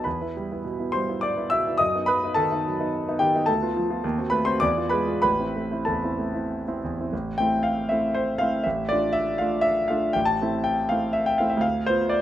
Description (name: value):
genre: classical, romantic character piece for solo piano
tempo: 92-123 BPM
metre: 3/4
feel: rubato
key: A minor from 3.5 s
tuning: A4 = 440 Hz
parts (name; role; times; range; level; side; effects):
- clear concert grand piano; solo; 0.0-12.2 s; A1 to E6; -22 LUFS; equal; none
room: light reverb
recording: none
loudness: -22 LUFS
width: side -12 dB against mid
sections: 0.0-7.1 A section; 7.1-12.2 B section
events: none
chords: 0.1 Em; 1.8 B7/F#; 3.5 Bm7b5/D; 4.0 D#dim7; 4.6 E7b9; 5.2 Am; 8.6 Dm/A; 10.2 Am; 11.6 Bdim/D